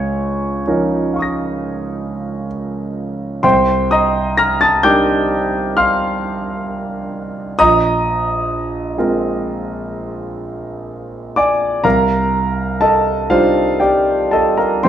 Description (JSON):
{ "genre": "classical, impressionist solo piano", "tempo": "37-44 BPM (dotted quarters)", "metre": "9/8", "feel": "rubato", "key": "unclear", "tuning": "A4 = 440 Hz", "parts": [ { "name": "clear concert grand piano", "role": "solo", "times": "0.0-14.9 s", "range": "Bb1 to Bb6", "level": "-14 LUFS", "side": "equal", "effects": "none" } ], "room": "moderate recital hall reverb, RT60 1.4 s", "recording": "dark, warm production", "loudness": "-14 LUFS", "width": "side -10 dB against mid", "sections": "0.0-14.9 A section", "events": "none", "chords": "0.0 Db69; 3.4 Cm9; 7.6 Bb11; 11.8 Cm9" }